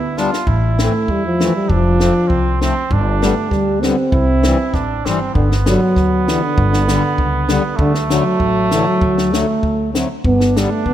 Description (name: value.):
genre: alpine folk, alpine dance band.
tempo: 98 BPM.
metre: 2/4.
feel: straight.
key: C major, G major from 5.3 s.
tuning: A4 = 440 Hz.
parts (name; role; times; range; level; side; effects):
dark euphonium; melody; 0.0-10.9 s; D3 to C4; -18 LUFS; equal; none.
mellow trumpet; second line; 0.0-10.9 s; A3 to F4; -22 LUFS; right 5 dB; slapback echo.
upright bass; bass; 0.0-10.9 s; F1 to E2; -19 LUFS; equal; none.
accordion; accompaniment; 0.2-10.7 s; D3 to D4; -23 LUFS; left 5 dB; none.
compact cocktail drum kit; drums; 0.2-10.9 s; hi-hat, kick drum, snare drum; -21 LUFS; left 1 dB; none.
room: moderate concert hall reverb, RT60 2.4 s.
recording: none.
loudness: -13 LUFS.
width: side -11 dB against mid.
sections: 0.0-5.3 A section; 5.3-10.9 B section.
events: drum fill 0.0-0.5.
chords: 0.5 Am; 1.7 F; 2.9 G; 4.1 C; 5.3 G; 7.8 D; 10.2 G.